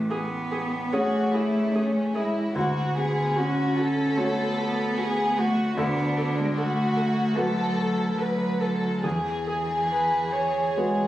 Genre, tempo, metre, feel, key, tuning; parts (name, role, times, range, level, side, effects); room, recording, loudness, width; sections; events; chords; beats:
neoclassical piano and strings; 68-76 BPM; 4/4; rubato; A major; A4 = 439 Hz
warm cello; second line; 0.0-11.1 s; E3 to C#4; -27 LUFS; right 1 dB
clear grand piano; accompaniment; 0.0-11.1 s; A1 to C#5; -28 LUFS; left 1 dB
dark viola; accompaniment; 0.1-11.1 s; F#4 to C#5; -33 LUFS; right 3 dB
warm chamber violin section; melody; 0.9-11.1 s; C#4 to B4; -27 LUFS; left 1 dB
light reverb; recorded on a phone in the room, studio reverb, compression; -22 LUFS; side -14 dB against mid
0.0-11.1 A section
0.0 Amaj7; 2.6 Dmaj7; 5.8 Bm7/D; 9.0 Eadd9
0.10 0.93 1.75 | 2.55 3.36 4.17 4.97 | 5.76 6.56 7.36 8.18 | 9.04 9.91 10.77